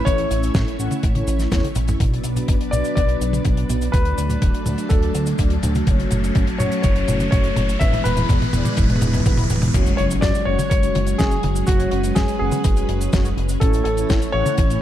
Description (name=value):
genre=italo disco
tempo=124 BPM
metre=4/4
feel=straight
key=F# minor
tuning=A4 = 440 Hz
part: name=dark concert grand piano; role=melody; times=0.0-14.8 s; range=F#4 to E5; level=-25 LUFS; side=left 1 dB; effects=tape echo
part: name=string machine, full ensemble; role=sustained chords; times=0.0-14.8 s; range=E3 to E5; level=-26 LUFS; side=equal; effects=ensemble chorus
part: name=mellow synth brass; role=stabs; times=0.1-14.8 s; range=G#3 to F#5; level=-29 LUFS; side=left 2 dB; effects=chorus
part: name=chorused synth bass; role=bass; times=0.1-14.8 s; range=D1 to A2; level=-23 LUFS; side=equal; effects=none
part: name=damped 70s drum kit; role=drums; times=0.1-14.8 s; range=cabasa, crash cymbal, hi-hat, snare drum, toms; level=-24 LUFS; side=equal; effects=none
part: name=electronic kick drum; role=drums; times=0.1-14.7 s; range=none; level=-20 LUFS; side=equal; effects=none
part: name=riser and impact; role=sound effects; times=4.5-11.7 s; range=none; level=-30 LUFS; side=equal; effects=none
room=light reverb, small room ambience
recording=dark, warm production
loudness=-17 LUFS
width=side -12 dB against mid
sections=0.0-2.0 A section; 2.0-9.7 B section; 9.7-14.8 C section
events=drum fill 1.6-2.0, 2.0-9.7; filter sweep on analog polysynth 2.0-9.7; riser 4.5-9.7; impact 9.7-11.7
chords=0.0 A; 2.0 Bm; 3.9 D; 5.9 F#m; 7.8 E; 9.7 F#sus2; 13.6 A